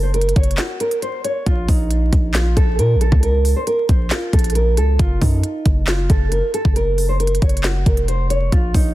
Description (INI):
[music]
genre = hip hop, trap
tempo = 136 BPM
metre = 4/4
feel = half-time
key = unclear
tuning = A4 = 440 Hz
[part]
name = nylon-string guitar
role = melody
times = 0.0-8.9 s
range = Eb4 to Db5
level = -22 LUFS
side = right 1 dB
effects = low-pass filter, digital delay
[part]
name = hard-hitting 808-style bass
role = bass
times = 0.0-8.9 s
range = F1 to Bb2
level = -18 LUFS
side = equal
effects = none
[part]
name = trap drum kit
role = drums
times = 0.1-8.8 s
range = handclaps, hi-hat, kick drum, snare drum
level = -18 LUFS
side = equal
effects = none
[sound]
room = digital ambience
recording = dense, heavily limited modern master, vinyl crackle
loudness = -15 LUFS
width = side -16 dB against mid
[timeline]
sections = 0.0-8.9 A section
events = break 0.6-1.5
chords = 0.0 Gb(#11); 1.5 Bbm; 5.0 F5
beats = 0.14 0.58 1.02 | 1.47 1.91 2.35 2.79 | 3.23 3.67 4.11 4.55 | 4.99 5.44 5.88 6.32 | 6.76 7.20 7.64 8.08 | 8.52